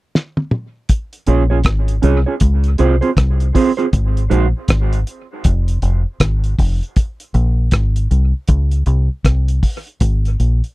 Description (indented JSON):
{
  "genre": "dub reggae",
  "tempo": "79 BPM",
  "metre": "4/4",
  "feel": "swing 62% on 16ths",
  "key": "Bb minor",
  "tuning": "A4 = 440 Hz",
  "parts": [
    { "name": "cloth-damped thuddy drum kit", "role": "drums", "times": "0.2-10.7 s", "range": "hi-hat, kick drum, rim click, snare drum, toms", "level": "-16 LUFS", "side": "equal", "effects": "none" },
    { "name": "mellow electric guitar", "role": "accompaniment", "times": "1.3-4.5 s", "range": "Ab3 to Db5", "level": "-18 LUFS", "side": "right 5 dB", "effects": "lush chorus, high-pass filter, dub echo" },
    { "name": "deep dub fingered electric bass", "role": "bass", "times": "1.3-10.6 s", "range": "F1 to Db2", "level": "-14 LUFS", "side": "equal", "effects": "none" }
  ],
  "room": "little or no reverb",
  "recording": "dry, close 1970s-style studio recording",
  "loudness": "-14 LUFS",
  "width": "side -19 dB against mid",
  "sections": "0.9-10.7 A section",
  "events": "drum fill 0.1-0.9",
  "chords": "0.0 N.C.; 0.9 Bbm7; 2.4 Dbmaj7; 3.9 N.C.; 5.5 Fm; 7.0 Abadd9; 8.5 N.C.; 10.0 Absus2"
}